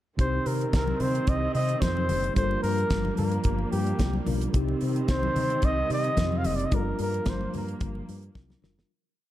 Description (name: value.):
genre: disco.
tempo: 110 BPM.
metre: 4/4.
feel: straight.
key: C minor.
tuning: A4 = 440 Hz.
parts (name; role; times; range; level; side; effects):
breathy flugelhorn; melody; 0.2-8.1 s; G4 to F5; -30 LUFS; equal; slapback echo.
mellow tine electric piano; accompaniment; 0.2-8.9 s; C3 to Bb4; -32 LUFS; left 2 dB; medium stereo tremolo.
dark studio string section; sustained chords; 0.2-8.9 s; Eb3 to C4; -34 LUFS; right 2 dB; none.
fingered electric bass; bass; 0.2-8.8 s; F#1 to C3; -29 LUFS; equal; none.
damped 70s drum kit; drums; 0.2-8.9 s; hi-hat, kick drum, snare drum; -29 LUFS; equal; none.
congas; percussion; 0.9-8.8 s; none; -37 LUFS; left 5 dB; none.
room: light reverb, small room ambience.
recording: dark, warm production.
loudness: -24 LUFS.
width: side -14 dB against mid.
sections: 0.2-8.9 verse.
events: fade-out 6.7-8.9; drum fill 8.4-8.9.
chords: 0.2 Cm; 2.4 Gm7; 4.5 Cm; 6.7 Gm7.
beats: | 0.19 0.73 1.27 1.82 | 2.36 2.91 3.45 4.00 | 4.54 5.09 5.63 6.18 | 6.72 7.27 7.81 8.35.